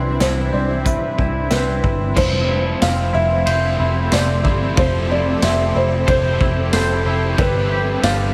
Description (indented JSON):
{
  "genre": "dream pop",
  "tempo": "92 BPM",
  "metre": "4/4",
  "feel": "straight",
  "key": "F lydian",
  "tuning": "A4 = 439 Hz",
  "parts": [
    { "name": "felt-muted upright piano", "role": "melody", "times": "0.0-8.3 s", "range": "A4 to F5", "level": "-24 LUFS", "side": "equal", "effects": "diffuse ambient delay" },
    { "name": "shimmering ambient pad", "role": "sustained chords", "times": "0.0-8.3 s", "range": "E3 to A4", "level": "-28 LUFS", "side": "equal", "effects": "chorus, built-in reverb" },
    { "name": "twangy electric guitar", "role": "arpeggios", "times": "0.0-8.3 s", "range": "C3 to C5", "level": "-27 LUFS", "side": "equal", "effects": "lush chorus, diffuse ambient delay" },
    { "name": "vintage muted picked electric bass", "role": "bass", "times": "0.0-8.3 s", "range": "F1 to C2", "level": "-23 LUFS", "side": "equal", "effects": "none" },
    { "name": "raw garage drum kit", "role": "drums", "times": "0.2-8.2 s", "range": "crash cymbal, hi-hat, kick drum, ride cymbal, snare drum, tambourine", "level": "-24 LUFS", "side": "equal", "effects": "none" },
    { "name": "crunchy overdriven guitar", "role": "accompaniment", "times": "2.1-8.3 s", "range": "F3 to C5", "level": "-30 LUFS", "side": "equal", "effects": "tremolo, lush chorus" }
  ],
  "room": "wet huge ambient reverb, RT60 7.8 s",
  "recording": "dreamy mix soaked in reverb",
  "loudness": "-18 LUFS",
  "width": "mono",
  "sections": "0.0-2.2 A section; 2.2-8.3 B section",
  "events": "none",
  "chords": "0.0 Cmaj7; 2.2 Fmaj7; 7.4 Gadd9"
}